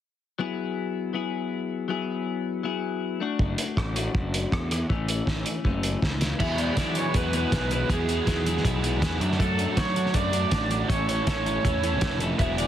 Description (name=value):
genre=indie rock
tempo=160 BPM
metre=4/4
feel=straight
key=E mixolydian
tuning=A4 = 440 Hz
part: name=clean electric guitar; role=riff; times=0.4-12.7 s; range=E3 to A4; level=-30 LUFS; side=left 7 dB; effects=analog chorus
part: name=fuzz picked electric bass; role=bass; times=3.4-12.7 s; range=E1 to F#3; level=-28 LUFS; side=equal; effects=overdrive
part: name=cloth-damped thuddy drum kit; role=drums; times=3.4-12.7 s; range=crash cymbal, hi-hat, kick drum, rim click, snare drum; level=-27 LUFS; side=equal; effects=none
part: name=raw garage guitar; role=melody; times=6.4-12.7 s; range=G#4 to E5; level=-29 LUFS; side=right 2 dB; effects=overdrive, slapback echo
part: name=thick fuzz guitar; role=riff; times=6.4-12.7 s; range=A2 to F#4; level=-31 LUFS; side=right 5 dB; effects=distortion, ensemble chorus
room=light reverb, studio reverb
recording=dense, heavily limited modern master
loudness=-24 LUFS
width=side -10 dB against mid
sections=0.4-6.4 A section; 6.4-12.7 B section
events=none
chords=0.4 Eadd9; 3.2 D/F#; 4.9 A; 6.4 Eadd9; 9.2 D/F#; 10.9 A